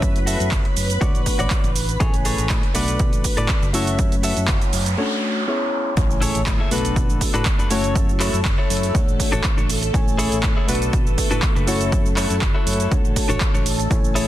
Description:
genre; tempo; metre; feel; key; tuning
filtered disco house; 121 BPM; 4/4; swing 53% on 16ths; F# minor; A4 = 440 Hz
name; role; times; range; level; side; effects
bright reed electric piano; accompaniment; 0.0-14.3 s; A3 to C#6; -26 LUFS; left 2 dB; phaser, sidechain pumping, low-pass filter
string machine, full ensemble; sustained chords; 0.0-14.3 s; A3 to B5; -29 LUFS; equal; ensemble chorus, sidechain pumping, low-pass filter
direct-recorded clean electric guitar; riff; 0.0-14.3 s; D4 to E5; -27 LUFS; left 2 dB; sidechain pumping, low-pass filter
fingered electric bass; bass; 0.0-14.3 s; F#1 to B2; -25 LUFS; equal; sidechain pumping, low-pass filter
electronic kick drum; drums; 0.0-14.0 s; none; -20 LUFS; equal; overdrive
punchy analog drum machine; drums; 0.0-14.3 s; handclaps, hi-hat, shaker; -26 LUFS; right 2 dB; none
noise sweep and impact; sound effects; 4.3-8.0 s; none; -28 LUFS; right 1 dB; none
room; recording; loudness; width
little or no reverb; dense, heavily limited modern master; -17 LUFS; side -13 dB against mid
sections
0.0-6.0 A section; 6.0-14.3 B section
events
filter sweep 0.0-6.0; noise sweep 4.3-6.0; break 5.0-6.0; drop 6.0-14.3; impact 6.0-8.0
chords
0.0 F#m7; 1.0 Dmaj7; 2.0 Amaj7; 2.8 Bm7; 3.7 F#m7; 5.0 Dmaj7; 5.5 C#m7; 6.0 Amaj7; 6.7 Bm7; 7.7 F#m7; 8.9 Dmaj7; 9.9 Amaj7; 10.7 Bm7; 11.7 F#m7; 12.9 Dmaj7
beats
| 0.02 0.52 1.01 1.51 | 2.01 2.50 3.00 3.49 | 3.99 4.49 4.98 5.48 | 5.97 6.47 6.96 7.46 | 7.96 8.45 8.95 9.44 | 9.94 10.44 10.93 11.43 | 11.92 12.42 12.91 13.41 | 13.91

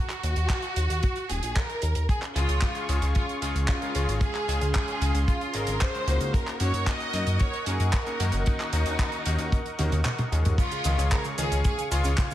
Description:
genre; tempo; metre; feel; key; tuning
italo disco; 113 BPM; 4/4; straight; Db major; A4 = 443 Hz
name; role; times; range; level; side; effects
rich studio violin section; melody; 0.0-12.3 s; Eb4 to Eb5; -32 LUFS; equal; ping-pong delay
damped 70s drum kit; drums; 0.1-12.3 s; cabasa, crash cymbal, handclaps, hi-hat, toms; -32 LUFS; right 1 dB; studio reverb, gated reverb
chorused synth bass; bass; 0.2-12.2 s; Eb1 to Gb2; -26 LUFS; equal; none
kick drum; drums; 0.5-12.3 s; none; -25 LUFS; equal; studio reverb
warm analog pad; sustained chords; 2.2-12.3 s; Db4 to Db6; -34 LUFS; equal; chorus
bright electric grand piano; stabs; 2.4-12.3 s; Db3 to Bb4; -35 LUFS; left 5 dB; none
analog pluck; arpeggios; 10.6-12.3 s; Db3 to Db4; -35 LUFS; right 2 dB; chorus, ping-pong delay
room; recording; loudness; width
light reverb, studio reverb; none; -24 LUFS; side -13 dB against mid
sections
0.0-10.6 A section; 10.6-12.3 B section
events
drum fill 9.8-10.6; kick drops out 10.1-10.6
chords
0.0 Ebm; 2.1 Db; 6.3 Gb6; 8.5 Ebm7; 10.6 Db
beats
0.50 1.03 1.56 | 2.09 2.62 3.15 3.68 | 4.21 4.75 5.28 5.81 | 6.34 6.87 7.40 7.93 | 8.46 8.99 9.53 10.06 | 10.59 11.12 11.65 12.18

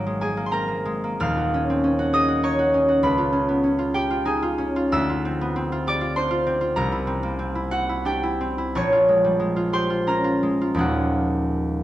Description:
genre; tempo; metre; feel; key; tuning
classical, solo harp piece; 78-102 BPM; 3/4; rubato; unclear; A4 = 441 Hz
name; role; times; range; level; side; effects
concert harp; solo; 0.0-11.8 s; Eb1 to F6; -20 LUFS; equal; none
room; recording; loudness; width
wet recital hall reverb, RT60 1.3 s; none; -20 LUFS; side -14 dB against mid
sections
0.0-11.8 A section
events
none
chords
0.0 Ab9; 1.2 Ebm9; 3.0 Db9; 4.9 Dm9; 6.8 C9; 8.7 Bbm7; 10.8 Ebm11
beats
0.51 | 1.20 1.83 2.44 | 3.03 3.63 4.25 | 4.93 5.55 6.16 | 6.77 7.40 8.05 | 8.74 9.39 10.06 | 10.79 11.55

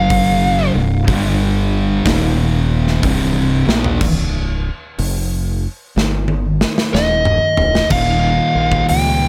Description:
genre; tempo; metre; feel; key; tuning
stoner and doom metal; 62 BPM; 4/4; swing 66% on 8ths; unclear; A4 = 444 Hz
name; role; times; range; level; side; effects
fuzz lead guitar; melody; 0.0-0.7, 6.9-9.3 s; Eb5 to G5; -20 LUFS; equal; distortion, tape echo
thick fuzz guitar; riff; 0.0-9.3 s; C2 to Bb3; -22 LUFS; equal; distortion
thick fuzz guitar; riff; 0.0-9.3 s; C2 to Bb3; -22 LUFS; equal; distortion
growling fingered electric bass; bass; 0.0-9.3 s; C1 to Db2; -21 LUFS; equal; overdrive
big rock drum kit; drums; 0.1-9.2 s; crash cymbal, hi-hat, kick drum, snare drum, toms; -22 LUFS; equal; none
room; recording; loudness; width
light reverb; none; -16 LUFS; mono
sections
0.0-4.0 A section; 4.0-7.9 B section; 7.9-9.3 C section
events
lead electric guitar solo 0.0-4.0; drum fill 3.5-4.0, 6.0-7.9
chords
0.0 F#5; 0.6 C5; 1.1 G5; 2.1 Eb5; 3.0 C5; 4.0 Cm; 7.9 Eb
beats
| 0.10 1.08 2.05 3.03 | 4.01 4.98 5.96 6.93 | 7.91 8.88

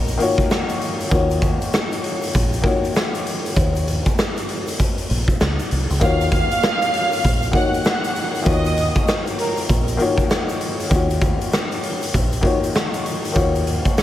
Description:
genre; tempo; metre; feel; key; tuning
hip hop, boom-bap hip-hop; 98 BPM; 4/4; swing 62% on 16ths; Eb minor; A4 = 440 Hz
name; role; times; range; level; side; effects
warm upright piano; accompaniment; 0.0-14.0 s; Eb3 to Db5; -23 LUFS; left 4 dB; cassette tape, high-pass filter, low-pass filter
deep dub fingered electric bass; bass; 0.0-13.8 s; Bb1 to Eb2; -21 LUFS; equal; none
raw garage drum kit; drums; 0.1-14.0 s; hi-hat, kick drum, rim click, snare drum; -20 LUFS; equal; none
egg shaker; percussion; 0.1-14.0 s; none; -43 LUFS; right 7 dB; none
warm studio violin section; melody; 6.0-9.6 s; Bb4 to Gb6; -23 LUFS; right 2 dB; high-pass filter, low-pass filter, digital delay
room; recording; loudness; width
small room ambience; vinyl crackle; -17 LUFS; side -13 dB against mid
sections
0.0-14.0 A section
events
none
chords
0.0 Ebm9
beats
0.50 | 1.11 1.73 2.34 2.95 | 3.56 4.18 4.79 5.40 | 6.01 6.63 7.24 7.85 | 8.46 9.07 9.69 10.30 | 10.91 11.52 12.14 12.75 | 13.36 13.97

